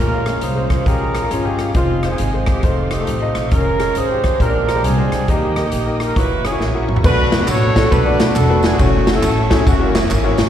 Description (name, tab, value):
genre	uptempo gospel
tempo	136 BPM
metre	4/4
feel	swing 64% on 8ths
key	unclear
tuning	A4 = 439 Hz
part	mellow horn section	melody	0.0-10.5 s	Ab3 to C#5	-20 LUFS	right 1 dB	slapback echo
part	clear grand piano	accompaniment	0.0-10.5 s	Bb2 to Eb5	-22 LUFS	left 5 dB	slapback echo
part	bright tonewheel organ	sustained chords	0.0-10.5 s	Db4 to Eb6	-29 LUFS	right 5 dB	fast rotary speaker, overdrive, chorus vibrato
part	upright bass	bass	0.0-10.5 s	E1 to Eb2	-20 LUFS	equal	none
part	swinging big-band drum kit	drums	0.3-10.5 s	crash cymbal, hi-hat, kick drum, ride cymbal, rim click, snare drum, toms	-19 LUFS	equal	none
part	tambourine and handclaps	percussion	7.0-10.5 s	none	-32 LUFS	right 1 dB	none
room	light reverb, studio reverb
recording	live gig heard through the venue's PA, recital hall reverb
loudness	-14 LUFS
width	side -10 dB against mid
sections	0.0-7.0 A section; 7.0-10.5 B section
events	drum fill 6.6-7.0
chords	0.0 Bbm7; 1.7 Fm7; 2.6 F7; 3.5 Bbm7/F; 4.4 Bb13; 5.3 Eb; 6.2 Gb7; 7.0 Bm7; 8.8 F#m7; 9.7 F#7